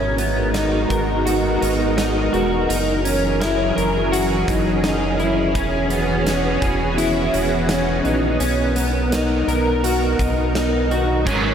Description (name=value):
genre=dream pop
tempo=84 BPM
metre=4/4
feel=straight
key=unclear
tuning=A4 = 439 Hz
part: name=soft string machine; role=sustained chords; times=0.0-11.5 s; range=E3 to A#4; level=-21 LUFS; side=right 1 dB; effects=ensemble chorus
part: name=electric guitar at the edge of break-up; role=arpeggios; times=0.0-11.5 s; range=B3 to A#4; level=-22 LUFS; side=left 2 dB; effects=analog chorus, analog delay
part: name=round analog bass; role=bass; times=0.0-11.5 s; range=E1 to B1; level=-24 LUFS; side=equal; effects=none
part: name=huge arena drum kit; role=drums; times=0.2-11.4 s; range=hi-hat, kick drum, snare drum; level=-27 LUFS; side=right 1 dB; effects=none
part: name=overdriven semi-hollow guitar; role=accompaniment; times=11.2-11.5 s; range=G#2 to A#4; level=-20 LUFS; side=right 4 dB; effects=tremolo, ensemble chorus
room=wet lush hall reverb, RT60 2.6 s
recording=dreamy mix soaked in reverb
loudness=-17 LUFS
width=side -8 dB against mid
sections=0.0-11.5 A section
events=none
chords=0.0 G#m9; 2.7 F#7; 5.5 E6; 8.4 Bmaj7